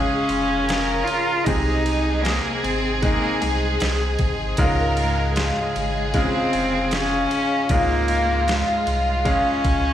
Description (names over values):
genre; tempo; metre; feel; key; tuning
pop ballad; 77 BPM; 4/4; straight; Db major; A4 = 440 Hz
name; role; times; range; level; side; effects
warm cello; melody; 0.0-9.9 s; Ab3 to F4; -24 LUFS; equal; slapback echo, ping-pong delay
warm studio violin section; second line; 0.0-9.9 s; F4 to Bb4; -27 LUFS; equal; slapback echo
bright concert grand piano; accompaniment; 0.0-9.9 s; Ab2 to F5; -27 LUFS; equal; slapback echo
mellow French horn section; sustained chords; 0.0-9.9 s; Ab3 to F5; -27 LUFS; left 2 dB; none
direct-recorded clean electric guitar; arpeggios; 0.0-9.9 s; C3 to Ab4; -32 LUFS; left 3 dB; phaser, slapback echo
warm sub bass; bass; 0.0-9.9 s; F1 to Db2; -25 LUFS; equal; none
smooth R&B drum kit; drums; 0.3-9.8 s; kick drum, ride cymbal, snare drum; -27 LUFS; equal; none
room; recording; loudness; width
light reverb; live gig heard through the venue's PA, club reverb; -18 LUFS; side -11 dB against mid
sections
0.0-9.9 A section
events
none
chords
0.0 Db; 1.5 Ab; 4.6 Db